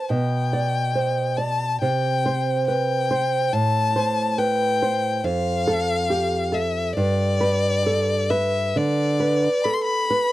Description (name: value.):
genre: romantic duo for violin and classical guitar.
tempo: 69 BPM.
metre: 4/4.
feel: rubato.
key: unclear.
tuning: A4 = 439 Hz.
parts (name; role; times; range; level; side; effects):
warm violin; melody; 0.0-10.3 s; D5 to C6; -24 LUFS; left 4 dB; none.
nylon-string guitar; accompaniment; 0.0-10.3 s; F2 to D5; -21 LUFS; right 2 dB; none.
room: little or no reverb.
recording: dry, close 1970s-style studio recording.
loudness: -19 LUFS.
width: side -15 dB against mid.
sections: 0.0-10.3 A section.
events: none.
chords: 0.1 G/B; 1.8 C5; 3.5 Am; 5.2 F; 7.0 G.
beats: | 0.10 0.95 1.81 2.68 | 3.54 4.38 5.25 6.10 | 6.97 7.86 8.76 9.65.